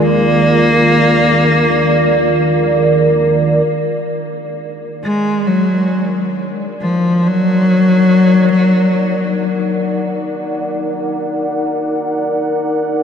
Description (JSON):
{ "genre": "ambient", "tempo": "free time", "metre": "none", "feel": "none", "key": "Eb harmonic minor", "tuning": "A4 = 440 Hz", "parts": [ { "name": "rich cello", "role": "melody", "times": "0.0-10.0 s", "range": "F3 to Bb3", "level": "-14 LUFS", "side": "left 2 dB", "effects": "diffuse ambient delay" }, { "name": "dark analog pad", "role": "sustained chords", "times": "0.0-13.0 s", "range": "Eb3 to Gb5", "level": "-16 LUFS", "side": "right 2 dB", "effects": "chorus" } ], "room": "wet huge ambient reverb, RT60 7.7 s", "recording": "dark, warm production", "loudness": "-12 LUFS", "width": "side -7 dB against mid", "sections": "0.0-3.7 A section; 3.7-13.0 B section", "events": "fade-in on analog synth pad 3.7-13.0", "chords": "0.0 Bb/Eb; 3.7 Ebm", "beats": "free time" }